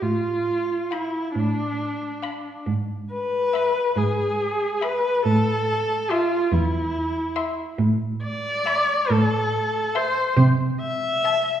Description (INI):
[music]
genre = classical, slow romantic movement for string quartet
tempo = 46 BPM (dotted quarters)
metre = 6/8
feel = rubato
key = A minor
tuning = A4 = 437 Hz
[part]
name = warm viola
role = accompaniment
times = 0.0-11.6 s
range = D4 to E5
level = -23 LUFS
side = left 1 dB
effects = none
[part]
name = clear cello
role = bass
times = 0.0-11.4 s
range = E2 to C3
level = -22 LUFS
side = right 2 dB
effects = none
[part]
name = rich violin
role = melody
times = 0.9-11.6 s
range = A5 to C6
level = -34 LUFS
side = left 7 dB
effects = none
[part]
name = rich violin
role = second line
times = 0.9-11.6 s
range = E5 to F5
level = -32 LUFS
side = left 4 dB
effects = none
[sound]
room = wet recital hall reverb, RT60 1.4 s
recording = heard from further back in the room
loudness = -20 LUFS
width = side -10 dB against mid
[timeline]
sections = 0.0-11.6 A section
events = none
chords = 0.0 Bm7b5/A; 2.7 E/G#; 5.3 Am; 7.8 E5/A; 9.1 Am; 10.4 Am/C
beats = | 0.03 1.36 | 2.67 3.97 | 5.26 6.52 | 7.79 9.10 | 10.37